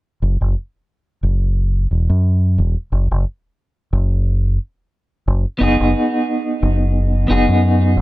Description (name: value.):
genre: trip hop.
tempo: 89 BPM.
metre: 4/4.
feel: swing 57% on 16ths.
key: unclear.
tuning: A4 = 437 Hz.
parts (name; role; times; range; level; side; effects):
deep dub fingered electric bass; bass; 0.2-8.0 s; E1 to F#2; -15 LUFS; equal; none.
clean electric guitar; accompaniment; 5.6-8.0 s; B3 to G#4; -17 LUFS; equal; tremolo, vintage 12-bit sampler grit, tape echo.
room: little or no reverb.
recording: none.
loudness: -15 LUFS.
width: side -18 dB against mid.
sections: 0.2-8.0 A section.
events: none.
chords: 0.2 N.C.; 5.6 G#m7/F#.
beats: | 0.21 0.89 1.56 2.24 | 2.91 3.58 4.26 4.93 | 5.61 6.28 6.96 7.63.